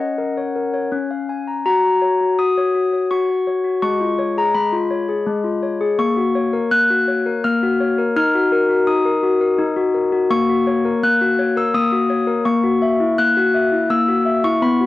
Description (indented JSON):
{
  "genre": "classical, lullaby for handbells",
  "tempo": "83 BPM",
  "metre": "3/4",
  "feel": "straight",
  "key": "F# major",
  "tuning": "A4 = 440 Hz",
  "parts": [
    { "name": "handbells", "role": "solo", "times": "0.0-14.9 s", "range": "G#3 to F#6", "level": "-15 LUFS", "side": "left 2 dB", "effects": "none" }
  ],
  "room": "moderate booth ambience, RT60 0.2 s",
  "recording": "home recording on cassette",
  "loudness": "-15 LUFS",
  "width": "side -16 dB against mid",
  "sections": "0.0-1.6 A section; 1.6-14.9 B section",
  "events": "none",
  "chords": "0.0 F#/C#; 0.9 C#; 1.6 F#; 3.8 C#7/G#; 6.0 F#/A#; 8.2 D#m; 10.3 F#/A#; 12.5 F#7/A#",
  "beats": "0.18 0.91 | 1.65 2.38 3.11 | 3.83 4.55 5.27 | 5.99 6.72 7.44 | 8.16 8.88 9.59 | 10.31 11.03 11.74 | 12.46 13.19 13.91 | 14.62"
}